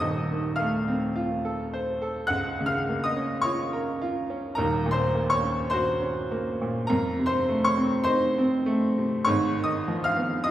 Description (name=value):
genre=classical, romantic nocturne for solo piano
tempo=49-55 BPM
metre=4/4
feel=rubato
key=unclear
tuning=A4 = 438 Hz
part: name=bright baby grand piano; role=solo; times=0.0-10.5 s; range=Eb1 to Gb6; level=-23 LUFS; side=equal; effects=none
room=wet recital hall reverb, RT60 1.6 s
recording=heard from further back in the room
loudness=-23 LUFS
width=side -12 dB against mid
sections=0.0-10.5 A section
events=none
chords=0.0 F7/Eb; 2.3 Bbm/Db; 4.6 Ebm7; 6.9 F7; 9.3 Fm7b5/Ab